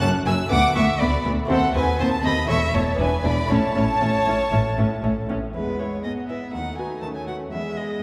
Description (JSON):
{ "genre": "classical, baroque-style concerto movement with solo episodes", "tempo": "121 BPM", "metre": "4/4", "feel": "straight", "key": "A major", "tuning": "A4 = 440 Hz", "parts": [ { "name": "rich chamber violin section", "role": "melody", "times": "0.0-8.0 s", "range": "F#4 to F#6", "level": "-34 LUFS", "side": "equal", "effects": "none" }, { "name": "rich violin", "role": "melody", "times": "0.0-8.0 s", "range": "A4 to A5", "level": "-28 LUFS", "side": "equal", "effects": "none" }, { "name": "warm studio violin section", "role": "second line", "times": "0.0-8.0 s", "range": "B3 to F#6", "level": "-31 LUFS", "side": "equal", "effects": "none" }, { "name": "lute", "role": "accompaniment", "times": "0.0-8.0 s", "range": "D2 to D5", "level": "-33 LUFS", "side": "equal", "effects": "none" }, { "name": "rich chamber viola section", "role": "accompaniment", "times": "0.0-8.0 s", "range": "G#3 to D4", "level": "-30 LUFS", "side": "equal", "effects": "none" }, { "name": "clear chamber double bass section", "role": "bass", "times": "0.0-5.4 s", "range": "E1 to D#2", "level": "-28 LUFS", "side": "equal", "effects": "none" }, { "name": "rich chamber cello section", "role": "bass", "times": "0.0-8.0 s", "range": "D2 to D#3", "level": "-29 LUFS", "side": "equal", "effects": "none" } ], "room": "wet scoring stage reverb, RT60 2.1 s", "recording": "heard from further back in the room", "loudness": "-22 LUFS", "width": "mono", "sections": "0.0-5.5 A section; 5.5-8.0 B section", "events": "none", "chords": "0.0 F#m; 0.5 Bm7/D; 1.5 D#dim7; 2.5 A/E; 3.0 E7; 3.5 A; 5.5 E; 6.5 B7/D#; 7.5 E" }